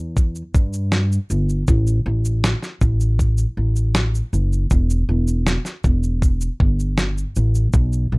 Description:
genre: acoustic pop.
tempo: 79 BPM.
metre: 4/4.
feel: straight.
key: unclear.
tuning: A4 = 440 Hz.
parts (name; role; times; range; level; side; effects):
upright bass; bass; 0.0-8.2 s; E1 to G2; -18 LUFS; equal; none.
dusty soul sampler-style drum kit; drums; 0.2-8.1 s; kick drum, shaker, snare drum; -18 LUFS; equal; none.
room: little or no reverb.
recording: dark, warm production.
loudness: -17 LUFS.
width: side -30 dB against mid.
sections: 0.0-8.2 A section.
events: none.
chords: none.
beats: 0.17 0.93 | 1.68 2.44 3.20 3.96 | 4.71 5.47 6.23 6.98 | 7.74.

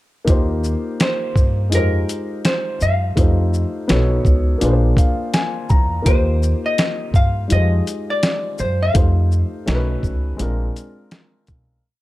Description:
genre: hip hop, jazz-hop.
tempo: 83 BPM.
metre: 4/4.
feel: swing 61% on 16ths.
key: Eb major.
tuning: A4 = 440 Hz.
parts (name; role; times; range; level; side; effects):
dark concert grand piano; accompaniment; 0.2-11.8 s; G3 to Bb5; -23 LUFS; left 2 dB; none.
upright bass; bass; 0.3-11.8 s; Bb1 to G2; -18 LUFS; equal; none.
boom bap sampler-style drum kit; drums; 0.3-11.7 s; hi-hat, kick drum, shaker, snare drum; -18 LUFS; equal; none.
vintage hollow-body jazz guitar; melody; 1.0-11.4 s; Bb4 to F5; -23 LUFS; left 1 dB; none.
room: digital ambience.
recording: dark, warm production.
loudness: -16 LUFS.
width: side -17 dB against mid.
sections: 0.3-11.8 A section.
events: grand piano fill 4.6-6.1; fade-out 8.9-11.8.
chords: 0.3 Eb69; 1.7 Fm9; 3.2 F7; 3.9 B9; 4.6 Bb7; 6.1 Eb69; 7.5 Fm9; 8.9 F7; 9.7 B9; 10.4 Bb7.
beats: | 0.27 1.00 1.72 2.44 | 3.17 3.89 4.61 5.33 | 6.06 6.78 7.50 8.23 | 8.95 9.67 10.39 11.12.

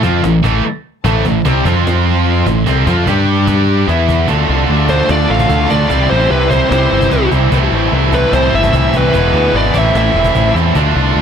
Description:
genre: heavy metal.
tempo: 148 BPM.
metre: 4/4.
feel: straight.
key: A minor.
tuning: A4 = 441 Hz.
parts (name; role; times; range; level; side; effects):
raw garage guitar; riff; 0.0-11.2 s; A2 to G4; -18 LUFS; equal; overdrive.
scooped high-gain guitar; riff; 0.0-11.2 s; E2 to G4; -17 LUFS; right 12 dB; distortion.
tight distorted guitar; riff; 0.0-11.2 s; A2 to A4; -21 LUFS; left 14 dB; distortion.
modern bright picked electric bass; bass; 0.0-11.2 s; E1 to G2; -15 LUFS; left 1 dB; none.
cajon; drums; 0.0-10.8 s; none; -22 LUFS; equal; none.
warm studio string section; sustained chords; 1.1-11.2 s; E4 to D6; -27 LUFS; left 2 dB; none.
high-gain lead guitar; melody; 4.9-10.5 s; B4 to F5; -16 LUFS; equal; distortion, tape echo.
room: little or no reverb.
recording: dark, warm production.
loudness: -10 LUFS.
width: side -7 dB against mid.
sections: 0.0-4.3 A section; 4.3-11.2 B section.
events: drum fill 3.9-4.3, 10.5.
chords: 0.0 Am; 1.6 F5; 2.5 Am; 3.1 G5; 3.9 E5; 4.3 Dm; 5.9 C; 9.1 E; 9.7 Am.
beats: 0.23 0.63 | 1.04 1.44 1.85 2.25 | 2.66 3.06 3.47 3.87 | 4.28 4.68 5.09 5.49 | 5.90 6.30 6.71 7.11 | 7.51 7.92 8.32 8.72 | 9.13 9.53 9.94 10.34 | 10.74 11.15.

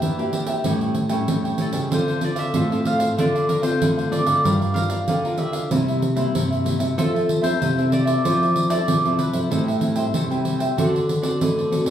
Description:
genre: samba and choro.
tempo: 95 BPM.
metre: 4/4.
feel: straight.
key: unclear.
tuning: A4 = 439 Hz.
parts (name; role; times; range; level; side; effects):
cavaquinho; accompaniment; 0.0-11.9 s; D4 to G5; -28 LUFS; right 1 dB; none.
nylon-string guitar; accompaniment; 0.0-11.9 s; G2 to Bb4; -25 LUFS; left 2 dB; none.
nylon-string guitar; bass; 0.0-11.9 s; G2 to F3; -23 LUFS; equal; none.
pandeiro; percussion; 0.0-11.9 s; none; -26 LUFS; right 2 dB; none.
mandolin; melody; 1.6-10.1 s; A4 to F5; -25 LUFS; right 1 dB; none.
room: wet studio reverb, RT60 0.8 s.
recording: heard from further back in the room, studio reverb.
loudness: -18 LUFS.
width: side -10 dB against mid.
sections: 0.0-11.9 A section.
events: none.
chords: 0.0 Em7b5; 0.7 A7; 1.9 Dm7; 4.5 Gm7; 5.7 C7; 7.0 Fmaj7; 9.5 Am7; 10.8 D7.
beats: 0.02 0.65 1.29 | 1.92 2.55 3.19 3.82 | 4.45 5.08 5.72 6.35 | 6.98 7.62 8.25 8.88 | 9.51 10.14 10.78 11.41.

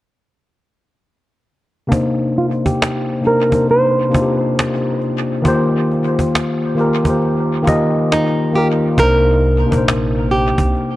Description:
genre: lo-fi hip hop.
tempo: 68 BPM.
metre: 4/4.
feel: swing 62% on 16ths.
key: C minor.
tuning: A4 = 439 Hz.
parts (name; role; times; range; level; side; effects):
mellow tine electric piano; accompaniment; 1.9-11.0 s; C3 to Eb5; -16 LUFS; left 1 dB; overdrive, cassette tape, low-pass filter, dub echo.
cajon; drums; 1.9-10.9 s; none; -21 LUFS; right 1 dB; dub echo.
flamenco guitar; melody; 2.4-11.0 s; Eb4 to C5; -18 LUFS; right 1 dB; low-pass filter, dub echo.
upright bass; bass; 9.0-10.7 s; Bb1 to C2; -18 LUFS; right 1 dB; none.
room: moderate spring reverb, RT60 2.1 s.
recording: echo-heavy mix.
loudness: -13 LUFS.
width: side -16 dB against mid.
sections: 1.9-9.0 A section; 9.0-11.0 B section.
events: filter sweep 1.9-9.0.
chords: 1.9 Cm7; 5.5 Eb6; 9.0 Cm7.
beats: | 1.92 2.81 3.69 4.57 | 5.45 6.33 7.22 8.10 | 8.98 9.86 10.75.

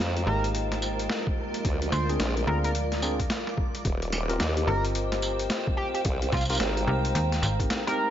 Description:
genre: glitch hop.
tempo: 109 BPM.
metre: 4/4.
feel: swing 62% on 16ths.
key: unclear.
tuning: A4 = 441 Hz.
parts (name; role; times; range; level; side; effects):
dark analog pad; sustained chords; 0.0-8.1 s; Ab3 to Bb5; -35 LUFS; left 1 dB; chorus, sidechain pumping.
formant-sweep wobble bass; bass; 0.0-6.9 s; Eb1 to F2; -28 LUFS; equal; chorus, tube saturation.
granular cloud pad; texture; 0.0-8.1 s; F4 to D6; -34 LUFS; right 1 dB; built-in reverb, sidechain pumping.
boom bap sampler-style drum kit; drums; 0.2-8.0 s; hi-hat, snare drum, tambourine; -32 LUFS; equal; overdrive.
sync lead; melody; 0.3-8.1 s; F4 to C5; -33 LUFS; right 1 dB; chorus, dub echo.
tine electric piano; stabs; 0.3-8.1 s; Ab3 to Bb4; -34 LUFS; equal; vintage 12-bit sampler grit, sidechain pumping, dub echo.
slap-like FM bass; bass; 0.3-7.7 s; G1 to Eb2; -28 LUFS; equal; none.
electronic kick drum; drums; 1.3-7.7 s; none; -29 LUFS; equal; overdrive.
room: light reverb, digital ambience.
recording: nothing above 7.6 kHz.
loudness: -24 LUFS.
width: side -10 dB against mid.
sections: 0.0-8.1 A section.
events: kick drops out 7.7-8.1.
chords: 0.0 Fm11; 1.6 Bb7; 3.8 Eb6; 6.1 Abmaj9.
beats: 0.00 0.55 1.10 | 1.65 2.20 2.75 3.30 | 3.85 4.40 4.95 5.50 | 6.05 6.60 7.15 7.70.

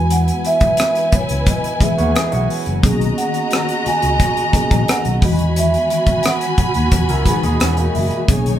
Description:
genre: lush 1970s-style soul.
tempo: 88 BPM.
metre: 4/4.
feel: straight.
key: unclear.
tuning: A4 = 440 Hz.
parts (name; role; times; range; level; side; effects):
vibraphone with soft mallets; melody; 0.0-7.2 s; C#5 to G#5; -20 LUFS; right 2 dB; none.
dark studio string section; second line; 0.0-8.6 s; D#4 to B5; -23 LUFS; equal; none.
mellow tine electric piano; accompaniment; 0.0-8.6 s; B2 to B5; -23 LUFS; left 3 dB; medium stereo tremolo.
fingered electric bass; bass; 0.0-8.5 s; F#1 to E2; -19 LUFS; equal; none.
modern studio drum kit; drums; 0.1-8.6 s; hi-hat, kick drum, rim click; -18 LUFS; equal; none.
electric guitar through a small old amp; riff; 2.0-2.8, 7.1-8.3 s; A#3 to B4; -25 LUFS; right 4 dB; spring reverb.
room: moderate studio reverb, RT60 0.6 s.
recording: band playing live in one room.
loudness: -14 LUFS.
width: side -11 dB against mid.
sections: 0.0-8.6 A section.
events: tine electric piano fill 7.3-8.3.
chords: 0.0 Eadd9; 2.8 Bmaj13; 5.2 Emaj9.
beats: | 0.11 0.79 1.47 2.15 | 2.84 3.52 4.20 4.88 | 5.56 6.24 6.92 7.61 | 8.29.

